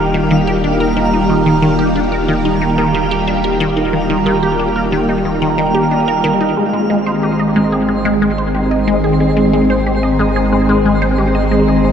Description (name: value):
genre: ambient, sequencer-driven space music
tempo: 91 BPM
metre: 4/4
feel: straight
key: unclear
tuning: A4 = 440 Hz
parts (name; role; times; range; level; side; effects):
- phased string machine; sustained chords; 0.0-11.9 s; Eb3 to Ab4; -16 LUFS; equal; ensemble chorus, phaser
- Celtic harp; arpeggios; 0.0-11.9 s; Ab3 to Bb5; -19 LUFS; right 2 dB; auto-pan, low-pass filter, analog delay
- resonant blip pluck; riff; 0.0-11.9 s; Eb3 to Eb5; -17 LUFS; left 1 dB; phaser, analog delay
- warm sub bass; bass; 0.0-11.9 s; Eb1 to Ab1; -22 LUFS; equal; none
- twinkling granular texture; texture; 0.0-11.9 s; C4 to F5; -24 LUFS; equal; built-in reverb
room: wet cathedral reverb, RT60 6.5 s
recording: in a vast, echoing space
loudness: -12 LUFS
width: side -8 dB against mid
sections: 0.0-6.6 A section; 6.6-11.9 B section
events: none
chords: 0.0 Eb; 6.6 Ab